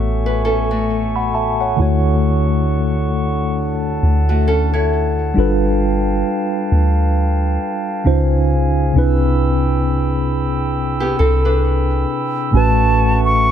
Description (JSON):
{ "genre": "R&B", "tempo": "67 BPM", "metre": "4/4", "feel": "swing 58% on 16ths", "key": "A major", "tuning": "A4 = 441 Hz", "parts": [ { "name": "mellow tine electric piano", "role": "accompaniment", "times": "0.0-13.5 s", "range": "A2 to B5", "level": "-19 LUFS", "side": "equal", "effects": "medium stereo tremolo" }, { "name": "glass harmonica", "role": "sustained chords", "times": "0.0-13.5 s", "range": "D4 to E6", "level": "-23 LUFS", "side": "left 1 dB", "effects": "none" }, { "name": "soft 808-style bass", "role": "bass", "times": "0.0-13.5 s", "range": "G1 to D2", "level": "-18 LUFS", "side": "equal", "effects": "none" }, { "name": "nylon-string guitar", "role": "arpeggios", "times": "0.3-5.3, 11.0-12.5 s", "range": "A3 to C#5", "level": "-21 LUFS", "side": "left 1 dB", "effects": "ping-pong delay" }, { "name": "hollow concert flute", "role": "melody", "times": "12.5-13.5 s", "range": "A5 to C#6", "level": "-16 LUFS", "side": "right 2 dB", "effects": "none" } ], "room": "small room ambience", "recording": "none", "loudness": "-14 LUFS", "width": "side -9 dB against mid", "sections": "0.0-12.5 A section", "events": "none", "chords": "0.0 A6; 1.8 Dmaj7; 5.4 G7; 8.1 C#maj7; 9.0 Cmaj7; 12.5 A6", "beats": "0.00 0.89 | 1.79 2.69 3.58 4.48 | 5.37 6.27 7.16 8.06 | 8.95 9.85 10.74 11.64 | 12.54 13.43" }